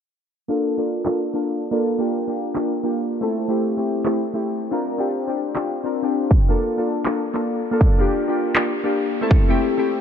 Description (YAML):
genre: future bass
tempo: 160 BPM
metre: 4/4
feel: swing 54% on 16ths, half-time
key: F major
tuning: A4 = 444 Hz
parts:
  - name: glassy digital keys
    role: accompaniment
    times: 0.5-10.0 s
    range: A3 to Bb4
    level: -20 LUFS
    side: left 1 dB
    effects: chorus, sidechain pumping, ping-pong delay
  - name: electronic handclaps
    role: drums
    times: 1.1-8.6 s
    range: none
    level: -26 LUFS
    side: right 1 dB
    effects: low-pass filter on snare, studio reverb
  - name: electronic kick drum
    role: drums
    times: 6.3-9.4 s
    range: none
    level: -15 LUFS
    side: right 1 dB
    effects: studio reverb
room: light reverb, digital ambience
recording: low-pass filter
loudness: -19 LUFS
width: side -8 dB against mid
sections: 0.3-10.0 A section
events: filter sweep on drum 0.3-10.0; filter sweep 0.3-10.0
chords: 0.3 Bbmaj7; 1.6 Fmaj9; 4.8 Bb69; 6.3 Bbmaj7; 7.6 Fmaj9